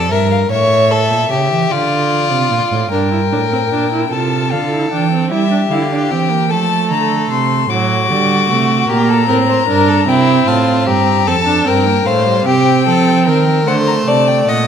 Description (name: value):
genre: classical, baroque-style fugue for string quartet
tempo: 50 BPM (dotted quarters)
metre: 6/8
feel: straight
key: G minor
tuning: A4 = 441 Hz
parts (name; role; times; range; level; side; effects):
- warm violin; melody; 0.0-14.7 s; D5 to D6; -18 LUFS; left 9 dB; none
- rich violin; second line; 0.0-14.7 s; E4 to Eb5; -16 LUFS; left 3 dB; none
- rich cello; bass; 0.0-14.7 s; F2 to G3; -17 LUFS; right 5 dB; none
- rich viola; accompaniment; 2.9-14.7 s; F#3 to F4; -17 LUFS; right 4 dB; none
room: wet recital hall reverb, RT60 1.6 s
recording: none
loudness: -11 LUFS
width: side -8 dB against mid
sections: 0.0-2.9 A section; 2.9-14.7 B section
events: none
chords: 0.0 Gm; 0.5 A; 1.7 Dm; 2.9 Gm; 4.1 F/C; 5.3 Edim; 6.5 Dm; 7.7 D7/A; 8.9 Gm; 10.1 C7; 11.3 F; 12.5 Am7b5/C; 13.7 D7(no3)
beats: | 0.51 1.71 | 2.92 4.12 | 5.32 6.51 | 7.71 8.89 | 10.08 11.27 | 12.46 13.67